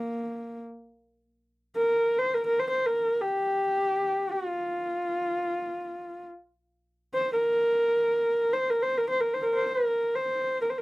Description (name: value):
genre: mongolian traditional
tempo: free time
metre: none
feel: none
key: unclear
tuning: A4 = 438 Hz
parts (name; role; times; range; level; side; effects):
- dark horsehead fiddle; solo; 0.0-10.8 s; Bb3 to C5; -25 LUFS; equal; none
room: light reverb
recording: dry, gritty hardware recording, transformer saturation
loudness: -25 LUFS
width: side -19 dB against mid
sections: 0.0-1.4 A section; 1.4-10.8 A section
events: none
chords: none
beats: free time